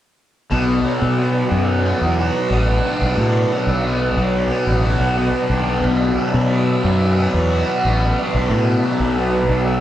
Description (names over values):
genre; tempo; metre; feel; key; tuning
rock; 90 BPM; 4/4; straight; B minor; A4 = 445 Hz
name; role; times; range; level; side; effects
tonewheel organ; sustained chords; 0.5-9.8 s; B4 to F#5; -28 LUFS; right 2 dB; slow rotary speaker, overdrive, chorus vibrato
fuzz guitar; riff; 0.5-9.8 s; B2 to F#4; -18 LUFS; equal; distortion, phaser
fuzz fingered electric bass; bass; 0.5-9.8 s; A1 to B2; -19 LUFS; equal; overdrive
room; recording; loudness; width
moderate large studio reverb, RT60 1.2 s; band playing live in one room; -15 LUFS; side -12 dB against mid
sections
0.5-9.8 A section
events
none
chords
0.5 Bm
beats
| 0.51 1.17 1.84 2.51 | 3.18 3.84 4.51 5.18 | 5.84 6.51 7.18 7.84 | 8.51 9.17